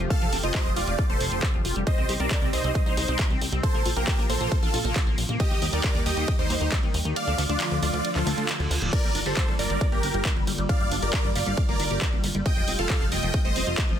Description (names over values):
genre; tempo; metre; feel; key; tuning
uplifting trance; 136 BPM; 4/4; straight; G minor; A4 = 440 Hz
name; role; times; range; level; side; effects
analog string pad; sustained chords; 0.0-14.0 s; C3 to G4; -33 LUFS; equal; ensemble chorus, vintage 12-bit sampler grit, sidechain pumping
liquid acid bass; arpeggios; 0.0-14.0 s; D3 to G4; -34 LUFS; left 2 dB; phaser, ensemble chorus, sidechain pumping, ping-pong delay
plucky analog bass; bass; 0.0-14.0 s; D1 to Eb2; -29 LUFS; equal; sidechain pumping
punchy analog drum machine; drums; 0.0-14.0 s; crash cymbal, handclaps, hi-hat, ride cymbal; -31 LUFS; equal; sidechain pumping on hats, sidechain pumping on cymbals
big supersaw lead; melody; 0.1-13.8 s; Eb4 to G5; -29 LUFS; right 1 dB; phaser, sidechain pumping, ping-pong delay
electronic kick drum; drums; 0.1-13.9 s; none; -25 LUFS; equal; none
reverse cymbal; sound effects; 8.3-8.9 s; none; -35 LUFS; right 2 dB; none
room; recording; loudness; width
little or no reverb; dense, heavily limited modern master; -22 LUFS; side -9 dB against mid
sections
0.0-14.0 A section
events
kick drops out 7.2-8.9; reverse cymbal 8.3-8.9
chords
0.0 Fadd9; 1.9 Cm; 3.6 Bbsus2; 5.4 Eb; 7.2 Dm; 8.9 Gm7; 12.5 Fadd9